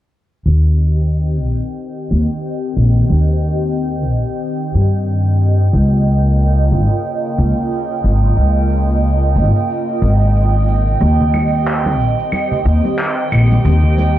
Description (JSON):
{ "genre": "sunset chillout", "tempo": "91 BPM", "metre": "4/4", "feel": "swing 57% on 16ths", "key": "Eb mixolydian", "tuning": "A4 = 435 Hz", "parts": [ { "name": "airy breathy pad", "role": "sustained chords", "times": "0.7-14.2 s", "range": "Db3 to Eb5", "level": "-21 LUFS", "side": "equal", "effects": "chorus, phaser" }, { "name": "upright bass", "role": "bass", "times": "0.5-14.2 s", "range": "Ab1 to G2", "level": "-13 LUFS", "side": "equal", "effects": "tube saturation" }, { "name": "cabasa, claves and handclaps", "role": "drums", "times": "0.5-14.1 s", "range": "none", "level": "-23 LUFS", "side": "left 1 dB", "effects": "none" }, { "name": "drifting glass-harmonics texture", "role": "texture", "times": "1.2-14.2 s", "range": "G5", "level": "-25 LUFS", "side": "right 6 dB", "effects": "chorus, built-in reverb" }, { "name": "congas", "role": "percussion", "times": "11.2-14.1 s", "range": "none", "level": "-24 LUFS", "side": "right 2 dB", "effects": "none" } ], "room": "studio reverb", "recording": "dry, gritty hardware recording, transformer saturation, low-pass filter", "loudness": "-13 LUFS", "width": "side -13 dB against mid", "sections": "0.5-14.2 A section", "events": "filter sweep on upright bass 0.5-14.2; filter sweep 0.5-14.2", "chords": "0.5 Eb6; 5.7 Db69; 11.0 Eb6" }